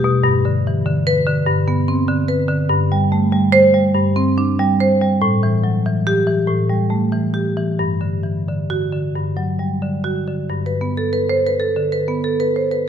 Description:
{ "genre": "classical, contemporary piece for solo marimba", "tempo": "88-98 BPM", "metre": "4/4", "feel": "rubato", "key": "G major", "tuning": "A4 = 442 Hz", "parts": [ { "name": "marimba with medium hard mallets", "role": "solo", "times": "0.0-12.9 s", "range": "E2 to C5", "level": "-15 LUFS", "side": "equal", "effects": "none" } ], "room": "wet recital hall reverb, RT60 1.3 s", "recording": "none", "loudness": "-15 LUFS", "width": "side -8 dB against mid", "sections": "0.0-10.5 A section; 10.5-12.9 A section", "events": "none", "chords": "0.3 G; 2.7 C5/G; 5.2 A5; 7.8 G5; 10.5 Gadd9" }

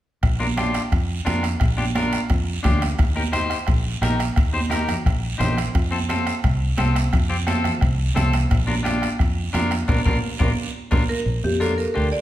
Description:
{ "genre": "latin, cumbia", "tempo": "174 BPM", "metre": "4/4", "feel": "straight", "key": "Bb major", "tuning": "A4 = 440 Hz", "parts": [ { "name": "fingered electric bass", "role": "bass", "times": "0.2-12.1 s", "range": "Bb1 to F2", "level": "-23 LUFS", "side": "equal", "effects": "none" }, { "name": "bombo", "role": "percussion", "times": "0.2-11.0 s", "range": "none", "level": "-24 LUFS", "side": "equal", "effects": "none" }, { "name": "guiro", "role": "percussion", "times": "0.2-12.2 s", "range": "none", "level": "-35 LUFS", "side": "right 5 dB", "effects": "none" }, { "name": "timbales", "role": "percussion", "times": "0.2-11.0 s", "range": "none", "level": "-35 LUFS", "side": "right 5 dB", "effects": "none" }, { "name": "clean electric guitar", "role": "accompaniment", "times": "0.4-12.1 s", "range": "C4 to C5", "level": "-26 LUFS", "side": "left 3 dB", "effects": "none" }, { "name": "congas", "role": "percussion", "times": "0.4-11.8 s", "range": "none", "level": "-27 LUFS", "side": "right 2 dB", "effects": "none" }, { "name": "marimba with medium hard mallets", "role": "melody", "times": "11.1-12.2 s", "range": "G4 to D5", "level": "-23 LUFS", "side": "equal", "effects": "none" } ], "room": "wet large studio reverb, RT60 1.1 s", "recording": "heard from further back in the room", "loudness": "-19 LUFS", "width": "side -13 dB against mid", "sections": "0.2-11.3 A section", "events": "band accent 9.9-11.3; clean electric guitar fill 10.6-11.3; drum fill 10.8-11.3", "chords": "0.2 Bb; 3.0 Eb; 5.7 F; 8.5 Bb" }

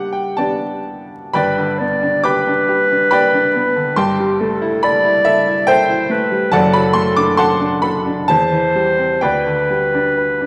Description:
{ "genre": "classical, romantic duo for clarinet and grand piano", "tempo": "69 BPM", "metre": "3/4", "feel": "uneven beats, rubato", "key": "G major", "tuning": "A4 = 439 Hz", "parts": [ { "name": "mellow clarinet", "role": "melody", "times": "0.0-10.5 s", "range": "G4 to D5", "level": "-19 LUFS", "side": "equal", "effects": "none" }, { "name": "bright baby grand piano", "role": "accompaniment", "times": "0.0-10.5 s", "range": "F#1 to D6", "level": "-18 LUFS", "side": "equal", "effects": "none" } ], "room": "moderate recital hall reverb, RT60 1.2 s", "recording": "vinyl crackle", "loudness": "-16 LUFS", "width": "mono", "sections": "0.0-1.3 A section; 1.3-10.5 B section", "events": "none", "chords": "0.0 G; 4.0 Am7/G; 6.5 D/F#; 8.3 C/E; 9.2 G/D" }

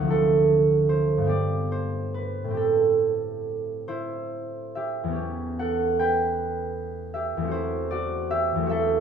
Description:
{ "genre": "classical, solo harp piece", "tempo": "45-53 BPM (dotted quarters)", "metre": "6/8", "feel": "rubato", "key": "A minor, E minor from 5.2 s", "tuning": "A4 = 444 Hz", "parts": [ { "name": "concert harp", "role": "solo", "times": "0.0-9.0 s", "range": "D2 to G5", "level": "-22 LUFS", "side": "right 2 dB", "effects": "none" } ], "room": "moderate stone room reverb, RT60 1.2 s", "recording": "none", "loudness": "-22 LUFS", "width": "side -7 dB against mid", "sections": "0.0-5.2 A section; 5.2-9.0 B section", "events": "none", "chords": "0.1 Dm9; 1.3 Gadd9; 2.6 Am7; 5.2 Em6; 7.5 Am6/E" }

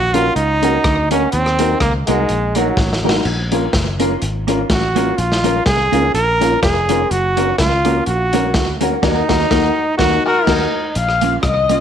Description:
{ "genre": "ska", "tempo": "125 BPM", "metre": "4/4", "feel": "swing 55% on 8ths", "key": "Bb minor", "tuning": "A4 = 440 Hz", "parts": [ { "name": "brilliant trombone", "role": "melody", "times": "0.0-10.9 s", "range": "Gb3 to Bb4", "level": "-17 LUFS", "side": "right 2 dB", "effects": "none" }, { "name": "fingered electric bass", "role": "bass", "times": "0.0-11.8 s", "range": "F1 to Eb2", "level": "-21 LUFS", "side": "equal", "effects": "tube saturation" }, { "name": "mellow electric guitar", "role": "accompaniment", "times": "0.1-11.8 s", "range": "Bb3 to Gb4", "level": "-22 LUFS", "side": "right 9 dB", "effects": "phaser, slapback echo" }, { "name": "dark upright piano", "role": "stabs", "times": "0.1-10.7 s", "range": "Bb3 to Bb4", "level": "-22 LUFS", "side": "left 10 dB", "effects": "slapback echo" }, { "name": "crunchy breakbeat drum kit", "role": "drums", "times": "0.1-11.8 s", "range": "crash cymbal, hi-hat, kick drum, rim click, snare drum", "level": "-20 LUFS", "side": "equal", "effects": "slapback echo" }, { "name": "dark erhu", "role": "melody", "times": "10.3-11.8 s", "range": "Bb4 to F5", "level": "-17 LUFS", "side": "left 5 dB", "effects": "slapback echo" } ], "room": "light reverb, small room reverb", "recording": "1960s-style stereo with parts hard left and right", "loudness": "-13 LUFS", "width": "side -8 dB against mid", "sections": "0.0-11.0 A section", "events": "trombone solo 0.0-11.0; drum fill 2.8-3.3; band accent 9.0-11.0", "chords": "0.0 Gb; 1.3 Ebm; 3.3 Bbm; 7.1 Gb; 9.0 Ebm; 11.0 Bbm" }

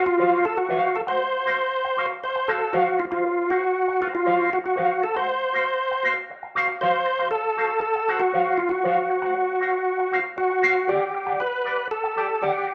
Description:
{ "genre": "funk", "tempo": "118 BPM", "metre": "4/4", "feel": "straight", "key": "unclear", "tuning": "A4 = 440 Hz", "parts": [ { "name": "bright tonewheel organ", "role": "melody", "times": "0.0-12.7 s", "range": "F4 to C5", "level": "-25 LUFS", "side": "equal", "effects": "chorus vibrato" }, { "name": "electric guitar with an envelope filter", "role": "accompaniment", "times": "0.0-12.7 s", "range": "F#4 to G5", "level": "-28 LUFS", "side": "equal", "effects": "wah, spring reverb" } ], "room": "moderate studio reverb, RT60 0.7 s", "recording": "band playing live in one room", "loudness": "-23 LUFS", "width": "mono", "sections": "0.0-10.9 A section; 10.9-12.7 B section", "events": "none", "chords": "0.0 F#(b5, no3); 10.9 Em9 (rootless)" }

